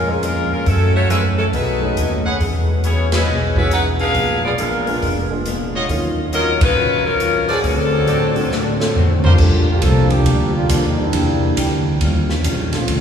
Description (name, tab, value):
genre	jazz, big band swing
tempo	138 BPM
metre	4/4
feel	swing 65% on 8ths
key	G minor from 9.4 s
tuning	A4 = 440 Hz
part	edgy saxophone section	melody	0.0-8.9 s	F3 to Gb5	-20 LUFS	left 2 dB	none
part	vintage hollow-body jazz guitar	accompaniment	0.0-13.0 s	Gb2 to G#4	-25 LUFS	left 1 dB	none
part	upright bass	bass	0.0-13.0 s	F1 to A2	-19 LUFS	equal	none
part	warm concert grand piano	accompaniment	0.1-9.6, 12.7-12.9 s	F3 to Bb4	-28 LUFS	right 2 dB	none
part	swinging big-band drum kit	drums	0.2-13.0 s	crash cymbal, hi-hat, kick drum, ride cymbal, snare drum, toms	-21 LUFS	equal	none
part	clear trumpet section	stabs	1.1-9.3 s	F4 to F#5	-28 LUFS	right 1 dB	none
part	clear trombone section	second line	9.0-11.9 s	D3 to A4	-21 LUFS	right 2 dB	none
room	wet cathedral reverb, RT60 5.0 s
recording	recorded in a church or concert hall, small room ambience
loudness	-14 LUFS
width	side -8 dB against mid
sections	0.0-9.4 A section; 9.4-13.0 B section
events	band accent 3.1, 6.5; drum fill 8.5-9.4; trombone section solo 9.4-13.0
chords	0.0 Bbm7; 0.7 Gbm7; 1.5 B13; 2.4 E6; 4.1 Bb7b9; 5.9 Ebm9; 7.6 D7; 9.4 Gm7; 11.1 Em7b5; 12.0 Eb9